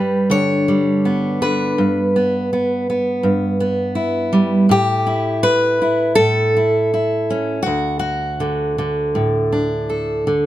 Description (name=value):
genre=folk, solo fingerstyle acoustic guitar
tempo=81 BPM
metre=4/4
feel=straight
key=D major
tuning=A4 = 440 Hz
part: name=fingerpicked steel-string acoustic guitar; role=solo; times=0.0-10.5 s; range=D2 to C#5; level=-15 LUFS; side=equal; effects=none
room=light reverb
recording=close, detailed microphones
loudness=-15 LUFS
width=side -13 dB against mid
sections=0.0-10.5 A section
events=none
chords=0.0 G; 1.8 Em/G; 4.7 A7(no3); 7.7 D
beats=0.28 1.03 | 1.76 2.50 3.23 3.96 | 4.70 5.44 6.17 6.91 | 7.65 8.39 9.13 9.88